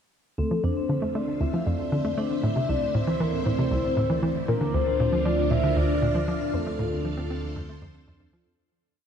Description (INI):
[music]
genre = ambient, sequencer-driven space music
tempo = 117 BPM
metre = 4/4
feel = straight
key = D minor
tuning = A4 = 440 Hz
[part]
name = soft octave-layered synth lead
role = melody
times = 0.4-8.1 s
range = A4 to E5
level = -28 LUFS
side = equal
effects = chorus, phaser, analog delay
[part]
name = phased string machine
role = sustained chords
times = 0.4-8.6 s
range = D3 to F5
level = -34 LUFS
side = equal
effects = ensemble chorus, phaser
[part]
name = vibraphone with medium mallets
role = arpeggios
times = 0.4-8.6 s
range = C4 to D6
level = -32 LUFS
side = moving between left 6 dB and right 1 dB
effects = auto-pan, analog delay
[part]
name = hollow square pluck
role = riff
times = 0.4-8.4 s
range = C2 to C4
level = -27 LUFS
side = equal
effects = chorus, analog delay
[part]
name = analog drone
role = bass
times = 0.4-8.6 s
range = D2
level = -32 LUFS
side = right 1 dB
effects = chorus, tube saturation
[sound]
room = wet huge ambient reverb, RT60 6.9 s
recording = dark, warm production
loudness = -23 LUFS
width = side -8 dB against mid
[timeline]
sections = 0.4-8.6 A section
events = fade-in on string machine 0.4-8.6; fade-in on synth drone 0.4-8.6; fade-out 5.9-8.6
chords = 0.4 Dm7; 2.4 Am; 4.5 Bb/D; 6.5 F/D